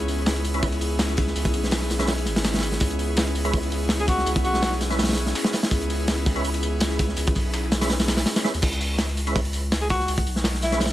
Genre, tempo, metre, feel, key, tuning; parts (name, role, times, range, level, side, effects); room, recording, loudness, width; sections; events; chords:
drum and bass, jungle; 165 BPM; 4/4; straight; C# minor; A4 = 441 Hz
airy breathy pad; sustained chords; 0.0-8.6 s; B3 to G#4; -30 LUFS; equal; chorus, vintage 12-bit sampler grit
saturated sub bass; bass; 0.0-10.9 s; G#1 to D#2; -26 LUFS; equal
crunchy breakbeat drum kit; drums; 0.0-10.9 s; crash cymbal, hi-hat, kick drum, snare drum; -24 LUFS; equal
dusty soul sampler-style drum kit; drums; 0.0-10.9 s; hi-hat, snare drum, tambourine; -34 LUFS; left 2 dB; overdrive, high-pass filter on perc, high-pass filter on hats, high-pass filter on snare, high-pass filter on room
percussive tonewheel organ; stabs; 0.5-10.9 s; G#3 to B4; -32 LUFS; right 3 dB; chorus vibrato, fast rotary speaker, vintage 12-bit sampler grit, dub echo
breathy alto saxophone; melody; 4.0-4.7, 9.8-10.8 s; E4 to G#4; -28 LUFS; equal; dub echo
light reverb, studio ambience; -21 LUFS; side -14 dB against mid
0.0-8.6 A section; 8.6-10.9 A section
drop 0.0-8.6, 8.6-10.9
0.0 C#m7